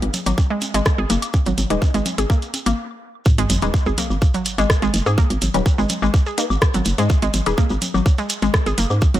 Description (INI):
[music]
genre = minimal techno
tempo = 125 BPM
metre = 4/4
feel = straight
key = G# minor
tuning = A4 = 437 Hz
[part]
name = hollow knocking FM bass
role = bass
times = 0.0-9.2 s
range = D#1 to G#2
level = -20 LUFS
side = equal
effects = sidechain pumping
[part]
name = garage drum kit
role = drums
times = 0.0-9.2 s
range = hi-hat, rim click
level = -24 LUFS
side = equal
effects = none
[part]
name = congas and woodblock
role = percussion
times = 0.1-9.0 s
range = none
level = -30 LUFS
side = left 2 dB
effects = ping-pong delay
[part]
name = shekere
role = percussion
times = 0.1-9.2 s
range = none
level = -30 LUFS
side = right 3 dB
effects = none
[part]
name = hollow square pluck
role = riff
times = 0.3-9.2 s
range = F#3 to G#4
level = -23 LUFS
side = left 1 dB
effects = chorus, sidechain pumping, dub echo
[part]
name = electronic kick drum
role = drums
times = 0.4-9.1 s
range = none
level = -16 LUFS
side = equal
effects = none
[part]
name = filtered dub chord stab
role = stabs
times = 1.7-7.5 s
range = D#4 to B4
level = -28 LUFS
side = left 2 dB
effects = phaser, ping-pong delay
[part]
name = sub drop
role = sound effects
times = 3.3-5.2 s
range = none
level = -28 LUFS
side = equal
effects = none
[sound]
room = little or no reverb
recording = none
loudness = -16 LUFS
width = side -13 dB against mid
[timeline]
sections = 0.0-3.3 A section; 3.3-9.2 B section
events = stop 2.8-3.3; drop 3.3-9.2; impact 3.3-5.2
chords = 0.0 N.C.; 3.3 G#5